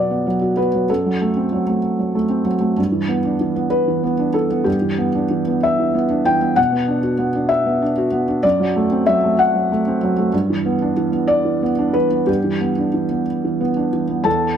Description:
neoclassical minimalist piano; 63 BPM (dotted quarters); 6/8; rubato; E minor; A4 = 439 Hz
felt-muted upright piano; solo; 0.0-14.6 s; E2 to A5; -16 LUFS; equal
moderate spring reverb, RT60 1.1 s; -16 LUFS; side -8 dB against mid
0.0-14.2 A section
0.0 Bm; 0.9 F#dim; 2.8 Em7/G; 6.6 Bm; 8.4 F#dim; 10.3 Em7/G
| 0.89 1.83 | 2.78 3.73 | 4.67 5.63 | 6.57 7.50 | 8.43 9.38 | 10.33 11.29 | 12.28 13.27 | 14.25

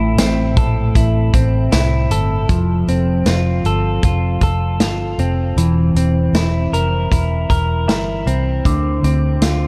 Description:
dream pop; 78 BPM; 4/4; straight; F major; A4 = 441 Hz
clean electric guitar; arpeggios; 0.0-9.7 s; A2 to Bb4; -20 LUFS; equal; subtle chorus, tape echo
vintage muted fingered electric bass; bass; 0.0-9.7 s; E1 to D2; -20 LUFS; equal
vintage drum kit; drums; 0.2-9.6 s; hi-hat, kick drum, snare drum, tambourine; -20 LUFS; equal
light reverb, studio reverb; dark, warm production; -16 LUFS; mono
0.0-2.5 A section; 2.5-9.7 B section
0.0 Am; 2.5 Fadd9; 5.6 C7/E; 8.7 Dm7
0.19 0.96 1.73 | 2.50 3.27 4.03 4.80 | 5.57 6.34 7.11 7.88 | 8.65 9.42

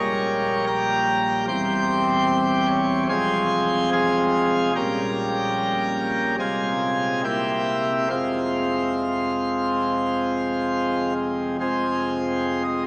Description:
classical, chorale-style piece for pipe organ; 68-75 BPM; 4/4; rubato; F minor; A4 = 440 Hz
pipe organ, plenum; solo; 0.0-12.9 s; E1 to Db6; -20 LUFS; equal
wet cathedral reverb, RT60 4.8 s; recorded in a church or concert hall, small speaker sound; -20 LUFS; side -28 dB against mid
0.0-11.6 A section; 11.6-12.9 B section
0.0 Gdim/Bb; 1.5 C/E; 3.1 Fm; 4.7 Gdim/Bb; 6.4 Fm/C; 7.2 C7; 8.1 Fm
0.66 | 1.47 2.28 3.10 3.92 | 4.75 5.57 6.38 7.23 | 8.09 8.97 9.86 10.73 | 11.59 12.44

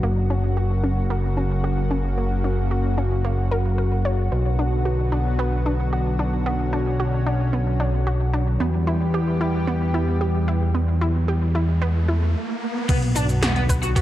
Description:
synthwave; 112 BPM; 4/4; straight; B harmonic minor; A4 = 440 Hz
lush unison pad; sustained chords; 0.0-14.0 s; C#3 to G4; -27 LUFS; equal; chorus, sidechain pumping
analog pluck; arpeggios; 0.0-14.0 s; A#3 to C#5; -29 LUFS; right 1 dB; chorus, cassette tape, tape echo
fat analog bass; bass; 0.0-14.0 s; F#1 to E2; -21 LUFS; equal; tube saturation, sidechain pumping
downlifter, riser and sub drop; sound effects; 0.0, 10.9-14.0 s; -29 LUFS; equal
raw garage guitar; riff; 12.9-14.0 s; B3 to F#4; -28 LUFS; equal; overdrive, analog chorus, tape echo
80s electronic pad drums; drums; 12.9-14.0 s; cabasa, crash cymbal, hi-hat, snare drum; -27 LUFS; equal
electronic kick drum; drums; 12.9-14.0 s; -20 LUFS; equal
light reverb; dark, warm production; -20 LUFS; side -14 dB against mid
0.0-12.9 A section; 12.9-14.0 B section
filter sweep on synth arpeggio sound 0.0-12.9; riser 10.9-12.9; stop 12.4-12.9; impact 12.9-14.0
0.0 F#; 4.3 Bm; 8.6 Em; 12.9 Bm
| 0.03 0.57 1.10 1.64 | 2.17 2.71 3.25 3.78 | 4.32 4.85 5.39 5.92 | 6.46 7.00 7.53 8.07 | 8.60 9.14 9.68 10.21 | 10.75 11.28 11.82 12.35 | 12.89 13.43 13.96

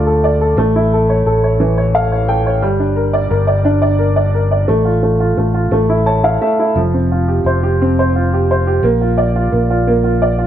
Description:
six-eight pop ballad; 58 BPM (dotted quarters); 6/8; straight; A4 = 440 Hz
warm upright piano; accompaniment; 0.0-10.5 s; D3 to A5; -14 LUFS; right 1 dB
fingered electric bass; bass; 0.0-10.5 s; F1 to D2; -16 LUFS; left 1 dB
moderate echo chamber reverb, RT60 2.0 s, small room ambience; -12 LUFS; side -10 dB against mid
0.0-10.5 A section
upright piano fill 1.6-2.6, 5.7-6.8
0.0 Dm; 0.6 A; 2.6 Gm; 4.7 F/A; 5.7 A; 6.8 Fsus2; 8.8 Bb
| 0.57 1.60 | 2.63 3.66 | 4.69 5.72 | 6.76 7.80 | 8.83 9.87

